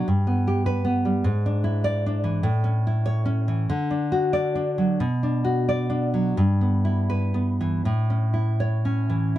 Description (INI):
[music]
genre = romantic piece for solo classical guitar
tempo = 40-51 BPM (dotted quarters)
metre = 6/8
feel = rubato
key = unclear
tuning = A4 = 442 Hz
[part]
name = nylon-string guitar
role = solo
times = 0.0-9.4 s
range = G2 to D5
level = -21 LUFS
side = equal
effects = none
[sound]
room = light reverb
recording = dark, warm production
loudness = -21 LUFS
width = side -13 dB against mid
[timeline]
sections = 0.0-9.4 A section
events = none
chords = 0.1 G; 1.3 E7/G#; 2.5 A; 3.7 D; 5.0 Bm; 6.4 Em/G; 7.8 A